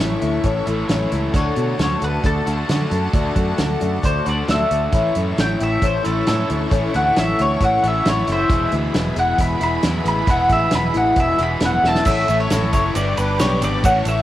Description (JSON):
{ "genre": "folk rock and heartland rock", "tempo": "134 BPM", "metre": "4/4", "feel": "straight", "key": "A major", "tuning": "A4 = 441 Hz", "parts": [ { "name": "picked twelve-string acoustic guitar", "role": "accompaniment", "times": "0.0-14.2 s", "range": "E2 to G4", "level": "-24 LUFS", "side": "left 5 dB", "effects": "cassette tape, plate reverb" }, { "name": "rich studio string section", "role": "sustained chords", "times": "0.0-14.2 s", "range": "G#4 to D6", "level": "-30 LUFS", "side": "left 1 dB", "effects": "cassette tape" }, { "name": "crunchy overdriven guitar", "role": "riff", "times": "0.0-14.2 s", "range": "E2 to F#4", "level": "-26 LUFS", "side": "right 1 dB", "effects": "cassette tape" }, { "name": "fingered electric bass", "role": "bass", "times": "0.0-14.2 s", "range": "E1 to D3", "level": "-23 LUFS", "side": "right 1 dB", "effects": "none" }, { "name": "natural country drum kit", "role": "drums", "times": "0.2-14.2 s", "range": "crash cymbal, hi-hat, kick drum, ride cymbal, snare drum", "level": "-22 LUFS", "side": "right 1 dB", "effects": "cassette tape" }, { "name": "mandolin", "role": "melody", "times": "1.4-14.2 s", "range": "A4 to B5", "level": "-20 LUFS", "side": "equal", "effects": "cassette tape, tape echo" }, { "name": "tube shaker", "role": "percussion", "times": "12.1-14.2 s", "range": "none", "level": "-37 LUFS", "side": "right 8 dB", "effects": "none" } ], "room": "moderate studio reverb, RT60 0.5 s", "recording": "home recording on cassette", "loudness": "-16 LUFS", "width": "side -13 dB against mid", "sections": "0.0-12.1 A section; 12.1-14.2 B section", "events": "mandolin solo 0.0-12.1; drum fill 11.8", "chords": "0.0 A; 1.3 D; 4.9 A; 8.5 E; 12.1 A; 13.0 G", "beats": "0.44 0.89 | 1.34 1.79 2.24 2.69 | 3.14 3.58 4.03 4.48 | 4.93 5.38 5.82 6.27 | 6.72 7.17 7.61 8.06 | 8.50 8.95 9.39 9.84 | 10.29 10.73 11.18 11.62 | 12.06 12.51 12.95 13.40 | 13.84" }